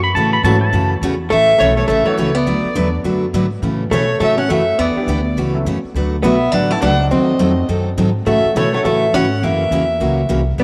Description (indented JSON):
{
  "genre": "country, western swing",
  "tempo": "207 BPM",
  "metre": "4/4",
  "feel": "swing 61% on 8ths",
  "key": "A major",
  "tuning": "A4 = 440 Hz",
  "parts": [
    { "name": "pedal steel guitar", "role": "second line", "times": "0.0-0.9 s", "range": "A5 to B5", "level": "-22 LUFS", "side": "equal", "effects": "none" },
    { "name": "upright bass", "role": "bass", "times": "0.0-10.6 s", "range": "A1 to B2", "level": "-23 LUFS", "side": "equal", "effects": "none" },
    { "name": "picked steel-string acoustic guitar", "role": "accompaniment", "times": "0.2-10.6 s", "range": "B2 to B4", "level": "-22 LUFS", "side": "equal", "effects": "none" },
    { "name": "warm upright piano", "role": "accompaniment", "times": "0.4-10.2 s", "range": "E3 to A4", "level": "-30 LUFS", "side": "equal", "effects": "none" },
    { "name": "dark fiddle", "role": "melody", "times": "1.3-10.6 s", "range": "C#5 to A5", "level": "-21 LUFS", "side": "equal", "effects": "none" },
    { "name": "archtop guitar, miked and amplified", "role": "second line", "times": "1.3-10.6 s", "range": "A3 to E4", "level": "-22 LUFS", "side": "equal", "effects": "none" }
  ],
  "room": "moderate plate reverb, RT60 3.6 s",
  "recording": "none",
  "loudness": "-16 LUFS",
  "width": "mono",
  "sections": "0.0-1.3 A section; 1.3-10.6 B section",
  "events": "pedal steel guitar solo 0.0-1.3",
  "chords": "0.0 A6; 2.5 D6; 3.6 A6; 4.8 Em7; 5.4 A6; 6.0 D6; 7.1 D#dim7; 8.3 A6; 9.4 F#7"
}